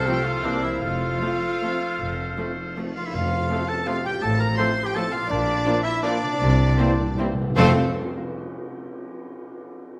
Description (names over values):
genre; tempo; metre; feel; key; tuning
classical, orchestral ballroom waltz; 145-178 BPM; 3/4; rubato; F major; A4 = 439 Hz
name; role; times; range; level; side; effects
dark studio violin section; melody; 0.0-7.8 s; A4 to C6; -36 LUFS; equal; none
bright clarinet; second line; 0.0-7.7 s; D4 to C5; -32 LUFS; equal; none
bright oboe; second line; 0.0-7.7 s; C4 to C6; -33 LUFS; equal; none
dark studio violin section; second line; 0.0-7.8 s; D4 to C5; -37 LUFS; equal; none
mellow hollow concert flute; second line; 0.0-7.8 s; D5 to F6; -35 LUFS; equal; none
concert harp; arpeggios; 0.0-7.8 s; A2 to F5; -36 LUFS; equal; none
timpani; percussion; 0.0-1.4, 6.4-7.7 s; F2 to C3; -31 LUFS; equal; none
rich studio viola section; accompaniment; 0.1-7.8 s; E3 to D4; -33 LUFS; equal; none
bright trombone section; sustained chords; 0.1-7.7 s; F2 to Bb3; -37 LUFS; equal; none
dark French horn section; sustained chords; 0.1-7.7 s; Bb3 to G4; -36 LUFS; equal; none
clear trumpet section; stabs; 0.1-7.7 s; D4 to D5; -34 LUFS; equal; none
dark chamber cello section; bass; 0.4-7.8 s; F2 to C3; -31 LUFS; equal; none
dark studio double bass section; bass; 0.4-7.8 s; F1 to C2; -29 LUFS; equal; none
cymbal swell and tam-tam; percussion; 0.8-4.6, 7.6-9.0 s; none; -38 LUFS; equal; none
room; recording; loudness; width
wet recital hall reverb, RT60 1.4 s; none; -23 LUFS; mono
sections
0.0-3.1 A section; 3.1-7.6 B section; 7.6-8.7 C section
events
band accent 3.1-3.5, 7.6-7.9; timpani fill 6.4-7.6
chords
0.4 C9; 0.8 F; 4.2 F/A; 5.3 Bb; 6.4 C7; 7.6 F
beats
0.07 0.45 | 0.82 1.22 1.62 | 2.00 2.38 2.78 | 3.14 3.50 3.88 | 4.23 4.59 4.96 | 5.32 5.67 6.04 | 6.41 6.78 7.18 | 7.57 7.94 8.32